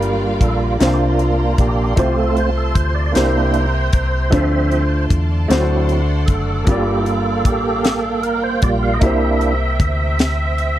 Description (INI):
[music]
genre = slow gospel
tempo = 51 BPM (dotted quarters)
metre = 6/8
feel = straight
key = unclear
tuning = A4 = 437 Hz
[part]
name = clear upright piano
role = accompaniment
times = 0.0-10.8 s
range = G2 to D5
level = -21 LUFS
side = equal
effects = none
[part]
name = bright studio string section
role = sustained chords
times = 0.0-10.8 s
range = F4 to C6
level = -30 LUFS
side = equal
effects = none
[part]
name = tonewheel organ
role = sustained chords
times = 0.0-10.8 s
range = F3 to F5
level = -20 LUFS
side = right 3 dB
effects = slow rotary speaker, overdrive, chorus vibrato
[part]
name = hollow-body short-scale fingered electric bass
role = bass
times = 0.0-10.8 s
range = F#1 to E2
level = -19 LUFS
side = equal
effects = none
[part]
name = crisp fusion drum kit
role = drums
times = 0.0-10.8 s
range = hi-hat, kick drum, snare drum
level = -17 LUFS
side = equal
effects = none
[sound]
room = studio reverb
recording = dry, close 1970s-style studio recording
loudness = -14 LUFS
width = side -12 dB against mid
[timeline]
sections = 0.0-10.8 A section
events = tonewheel organ solo 0.0-10.8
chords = 0.0 Gm7; 0.8 C9sus4; 2.0 F/C; 3.2 C7; 4.3 Dm7; 5.5 D7; 6.7 Gm7; 9.0 C7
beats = 0.80 | 1.98 3.15 | 4.33 5.50 | 6.67 7.85 | 9.02 10.19